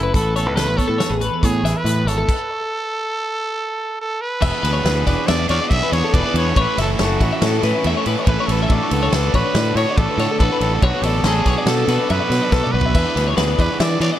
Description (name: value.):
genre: math rock and midwest emo.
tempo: 141 BPM.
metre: 5/4.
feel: straight.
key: A major.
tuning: A4 = 441 Hz.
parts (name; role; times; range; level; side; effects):
growling trumpet; melody; 0.0-14.1 s; E4 to E5; -23 LUFS; right 2 dB; analog delay.
twelve-string electric guitar; accompaniment; 0.0-2.3 s; E2 to E4; -25 LUFS; right 4 dB; analog chorus.
twelve-string electric guitar; arpeggios; 0.0-14.2 s; G#4 to E5; -23 LUFS; left 5 dB; spring reverb, analog delay.
growling fingered electric bass; bass; 0.0-14.1 s; E1 to E3; -20 LUFS; equal; overdrive.
loose indie drum kit; drums; 0.1-14.1 s; crash cymbal, hi-hat, kick drum, ride cymbal, snare drum, toms; -21 LUFS; equal; none.
cranked stack guitar; riff; 4.4-14.2 s; A2 to G#4; -23 LUFS; right 1 dB; overdrive.
room: small room ambience.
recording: echo-heavy mix.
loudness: -16 LUFS.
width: side -12 dB against mid.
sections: 0.0-4.4 A section; 4.4-14.2 B section.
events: stop 2.3-4.4; drum fill 12.5-12.9.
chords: 0.1 Amaj9; 2.3 N.C.; 4.4 E7(no3); 6.6 A69; 8.7 Dmaj7/A; 10.8 Bm7; 12.9 E7(no3).